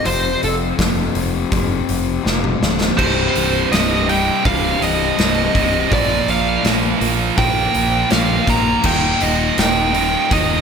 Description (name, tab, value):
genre	quiet-loud alternative rock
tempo	82 BPM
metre	4/4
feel	straight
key	C minor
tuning	A4 = 438 Hz
part	fuzz lead guitar	melody	0.0-10.6 s	A4 to Bb5	-20 LUFS	right 1 dB	distortion, slapback echo
part	fuzz guitar	riff	0.0-10.6 s	C2 to Bb3	-22 LUFS	left 10 dB	distortion, slapback echo
part	growling picked electric bass	bass	0.1-10.6 s	C1 to Bb1	-23 LUFS	right 1 dB	overdrive
part	big rock drum kit	drums	0.1-10.5 s	crash cymbal, hi-hat, kick drum, snare drum, toms	-20 LUFS	equal	none
part	scooped high-gain guitar	riff	3.0-10.6 s	C2 to Bb3	-20 LUFS	right 12 dB	distortion, slapback echo
room	moderate lush hall reverb, RT60 2.6 s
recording	big arena sound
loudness	-14 LUFS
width	side -6 dB against mid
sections	0.0-10.6 A section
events	lead electric guitar solo 0.0-10.6; drum fill 2.3-3.0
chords	0.0 F5; 3.0 Cm; 5.9 Bb5; 8.8 Eb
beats	| 0.06 0.79 1.52 2.25 | 2.99 3.72 4.45 5.18 | 5.92 6.65 7.38 8.11 | 8.84 9.57 10.31